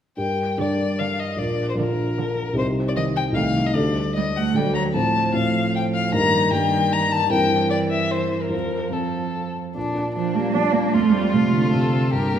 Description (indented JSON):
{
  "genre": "quick classical-period movement for piano quartet",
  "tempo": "152 BPM",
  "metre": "3/4",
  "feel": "straight",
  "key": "G minor",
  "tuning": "A4 = 440 Hz",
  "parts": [
    { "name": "warm violin", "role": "melody", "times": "0.2-12.4 s", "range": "D4 to Bb5", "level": "-24 LUFS", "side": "left 5 dB", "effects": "none" },
    { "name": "dark baby grand piano", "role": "accompaniment", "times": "0.2-12.4 s", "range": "Bb1 to C5", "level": "-22 LUFS", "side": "equal", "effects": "none" },
    { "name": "rich cello", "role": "second line", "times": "0.6-11.9 s", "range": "D3 to D4", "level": "-24 LUFS", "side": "right 5 dB", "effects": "none" },
    { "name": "rich violin", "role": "second line", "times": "9.8-12.4 s", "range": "D4 to Bb4", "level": "-27 LUFS", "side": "left 2 dB", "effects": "none" }
  ],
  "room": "wet recital hall reverb, RT60 1.5 s",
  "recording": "heard from further back in the room",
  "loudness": "-19 LUFS",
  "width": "side -9 dB against mid",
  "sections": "0.2-9.8 A section; 9.8-12.4 B section",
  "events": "none",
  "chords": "0.2 Gm; 1.4 Bb; 2.6 Cm; 3.4 Adim/C; 3.8 Dsus4; 4.6 D; 5.0 F/A; 6.1 Eb/G; 7.3 C7/G; 8.5 F; 9.8 Bb; 10.9 F"
}